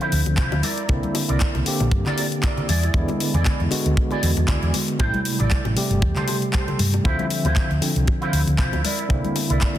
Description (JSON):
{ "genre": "nu-disco, nu disco", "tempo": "117 BPM", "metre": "4/4", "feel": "swing 56% on 16ths", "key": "D minor", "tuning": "A4 = 439 Hz", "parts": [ { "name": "overdriven tine electric piano", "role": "accompaniment", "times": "0.0-9.8 s", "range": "C3 to E5", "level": "-25 LUFS", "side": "equal", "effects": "medium tremolo, sidechain pumping, dub echo" }, { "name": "electric guitar with an envelope filter", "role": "riff", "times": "0.0-9.8 s", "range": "E4 to D5", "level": "-28 LUFS", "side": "right 3 dB", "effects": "ensemble chorus, dub echo" }, { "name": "pop drum kit", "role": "drums", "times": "0.0-9.8 s", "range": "handclaps, hi-hat", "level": "-28 LUFS", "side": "left 3 dB", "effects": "small room reverb" }, { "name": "hollow-body short-scale fingered electric bass", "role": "bass", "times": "0.1-9.8 s", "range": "G1 to G2", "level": "-22 LUFS", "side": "equal", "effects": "none" }, { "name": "bongos and congas", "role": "percussion", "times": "0.3-9.8 s", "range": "none", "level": "-31 LUFS", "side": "left 3 dB", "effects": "none" }, { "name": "kick drum", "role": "drums", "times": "0.4-9.7 s", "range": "none", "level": "-22 LUFS", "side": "equal", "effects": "small room reverb" } ], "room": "light reverb, small room ambience", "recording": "dense, heavily limited modern master", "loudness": "-19 LUFS", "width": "side -12 dB against mid", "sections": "0.0-9.8 A section", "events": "none", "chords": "0.0 Dm9; 0.6 C9; 2.7 E7; 5.0 Am7; 7.0 Dm9; 8.8 C9", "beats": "0.38 | 0.90 1.41 1.92 2.43 | 2.95 3.46 3.97 4.49 | 5.00 5.51 6.02 6.54 | 7.05 7.56 8.07 8.59 | 9.10 9.61" }